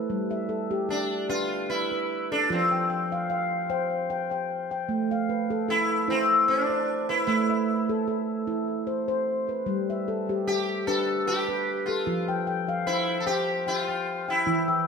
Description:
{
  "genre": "world meditative, meditative tuned percussion",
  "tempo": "75 BPM",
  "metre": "3/4",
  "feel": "swing 54% on 16ths",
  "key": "unclear",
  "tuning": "A4 = 440 Hz",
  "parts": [
    { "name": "handpan", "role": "arpeggios", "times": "0.0-14.9 s", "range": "E3 to G5", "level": "-26 LUFS", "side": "equal", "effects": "ping-pong delay" },
    { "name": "sitar", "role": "melody", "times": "0.9-14.7 s", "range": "C4 to A4", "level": "-26 LUFS", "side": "left 1 dB", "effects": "none" }
  ],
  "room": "wet echo chamber reverb, RT60 1.6 s, small room ambience",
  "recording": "none",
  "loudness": "-24 LUFS",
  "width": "side -5 dB against mid",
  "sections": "0.1-14.9 A section",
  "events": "none",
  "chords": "0.1 G; 2.5 F5; 4.9 Am; 9.7 G; 12.1 F5"
}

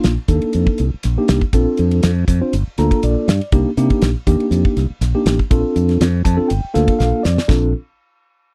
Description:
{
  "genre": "electric jazz fusion",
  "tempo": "121 BPM",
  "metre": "4/4",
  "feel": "swing 53% on 16ths",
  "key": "Bb major",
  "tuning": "A4 = 440 Hz",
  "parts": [
    { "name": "mellow tine electric piano", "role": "accompaniment", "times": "0.0-7.7 s", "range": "Bb3 to Bb5", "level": "-21 LUFS", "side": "equal", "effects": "none" },
    { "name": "modern bright fingered electric bass", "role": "bass", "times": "0.0-7.7 s", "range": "G1 to C3", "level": "-19 LUFS", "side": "equal", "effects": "none" },
    { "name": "damped 70s drum kit", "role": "drums", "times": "0.0-7.6 s", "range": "hi-hat, kick drum, ride cymbal, snare drum, splash cymbal", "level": "-20 LUFS", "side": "equal", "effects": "none" }
  ],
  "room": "little or no reverb",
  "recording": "dry, close 1970s-style studio recording",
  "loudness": "-16 LUFS",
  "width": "mono",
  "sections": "0.0-7.5 A section; 7.5-8.5 B section",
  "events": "tine electric piano fill 2.5-3.5, 6.0-7.5; drum fill 7.0-7.5",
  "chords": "0.0 Cm7; 1.5 Bbmaj9; 2.5 Gm9; 3.5 Cm7; 5.5 Bbmaj9; 6.5 Gm9; 7.5 Bbmaj9"
}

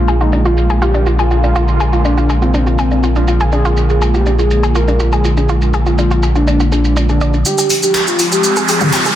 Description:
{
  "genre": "melodic techno",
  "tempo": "122 BPM",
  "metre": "4/4",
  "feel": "straight",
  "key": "unclear",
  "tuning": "A4 = 439 Hz",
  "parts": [
    { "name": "soft octave-layered synth lead", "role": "melody", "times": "0.0-9.2 s", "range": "C4 to Bb4", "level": "-18 LUFS", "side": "equal", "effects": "chorus, phaser, digital delay" },
    { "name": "sweeping resonant pad", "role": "sustained chords", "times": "0.0-9.2 s", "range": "D3 to G4", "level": "-19 LUFS", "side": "left 1 dB", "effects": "chorus" },
    { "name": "round analog bass", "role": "bass", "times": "0.0-7.4 s", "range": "Bb1", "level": "-14 LUFS", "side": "equal", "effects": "none" },
    { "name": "analog pluck", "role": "arpeggios", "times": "0.1-9.2 s", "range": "D4 to D5", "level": "-20 LUFS", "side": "equal", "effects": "chorus, digital delay" },
    { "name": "deep house drum kit", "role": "drums", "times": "0.1-9.2 s", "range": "handclaps, hi-hat, shaker, toms", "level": "-20 LUFS", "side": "right 1 dB", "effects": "low-pass filter on perc, low-pass filter on hats, low-pass filter on snare, low-pass filter on toms, low-pass filter on room" },
    { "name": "riser", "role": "sound effects", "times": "7.8-9.2 s", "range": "none", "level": "-18 LUFS", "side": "right 2 dB", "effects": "none" }
  ],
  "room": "moderate concert hall reverb, RT60 2.4 s",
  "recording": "dense, heavily limited modern master, low-pass filter",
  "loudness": "-11 LUFS",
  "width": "side -12 dB against mid",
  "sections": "0.0-7.5 A section; 7.5-9.2 B section",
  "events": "filter sweep on analog synth pad 0.0-7.5, 7.5-9.2; filter sweep 0.0-7.5; build-up 7.5-9.2; filter sweep on synth arpeggio sound 7.5-9.2; riser 7.8-9.2",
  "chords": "0.0 Bb7; 7.5 Fmadd9"
}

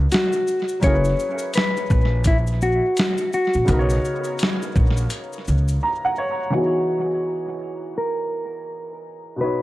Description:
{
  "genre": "lo-fi hip hop",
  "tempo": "84 BPM",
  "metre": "4/4",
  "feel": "swing 60% on 16ths",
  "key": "unclear",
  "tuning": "A4 = 440 Hz",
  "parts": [
    { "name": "warm upright piano", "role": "accompaniment", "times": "0.0-9.6 s", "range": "B2 to A#5", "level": "-26 LUFS", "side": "equal", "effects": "cassette tape, low-pass filter, tape echo" },
    { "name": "upright bass", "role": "bass", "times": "0.0-5.8 s", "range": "F#1 to C#2", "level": "-20 LUFS", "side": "equal", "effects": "none" },
    { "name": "mellow electric guitar", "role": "melody", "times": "0.1-9.6 s", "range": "E4 to C#5", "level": "-23 LUFS", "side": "left 1 dB", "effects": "low-pass filter, tape echo" },
    { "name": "dusty soul sampler-style drum kit", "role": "drums", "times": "0.1-5.8 s", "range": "hi-hat, kick drum, shaker, snare drum", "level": "-21 LUFS", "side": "equal", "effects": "tape echo" }
  ],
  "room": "light reverb",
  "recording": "echo-heavy mix",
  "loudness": "-19 LUFS",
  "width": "side -16 dB against mid",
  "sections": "0.0-6.5 A section; 6.5-9.6 B section",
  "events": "upright piano fill 5.5-6.5; silent gap 5.8-6.5; filter sweep 6.5-9.6",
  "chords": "0.0 Bmaj9; 0.8 F#7sus4; 3.7 Bmaj9; 6.5 Emaj13"
}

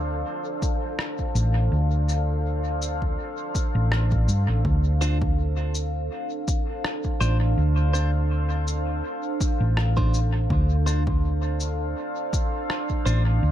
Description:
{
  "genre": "ambient dub",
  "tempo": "82 BPM",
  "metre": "4/4",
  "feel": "swing 55% on 16ths",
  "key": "D minor",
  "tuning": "A4 = 444 Hz",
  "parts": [
    { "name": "deep dark ambient pad", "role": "sustained chords", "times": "0.0-13.5 s", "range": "D4 to F5", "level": "-30 LUFS", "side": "right 1 dB", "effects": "chorus, built-in reverb" },
    { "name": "hollow-body short-scale fingered electric bass", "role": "bass", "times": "0.0-13.5 s", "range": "A1 to G2", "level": "-22 LUFS", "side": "equal", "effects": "none" },
    { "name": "wind-like tuned noise texture", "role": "texture", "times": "0.0-4.7 s", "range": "F3 to A4", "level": "-40 LUFS", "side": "left 3 dB", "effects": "built-in reverb" },
    { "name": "electronic kick drum", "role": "drums", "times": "0.6-13.0 s", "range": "none", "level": "-26 LUFS", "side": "equal", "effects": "none" },
    { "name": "electronic shaker and rim click", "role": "drums", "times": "0.6-13.2 s", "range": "none", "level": "-33 LUFS", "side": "left 1 dB", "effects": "dub echo" },
    { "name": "clean electric guitar", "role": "stabs", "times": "5.0-13.2 s", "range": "D4 to C5", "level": "-35 LUFS", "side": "right 1 dB", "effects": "phaser, dub echo" }
  ],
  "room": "digital ambience",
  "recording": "echo-heavy mix",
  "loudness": "-22 LUFS",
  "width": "side -11 dB against mid",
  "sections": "0.0-4.6 A section; 4.6-13.5 B section",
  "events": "none",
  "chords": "0.0 Dm7"
}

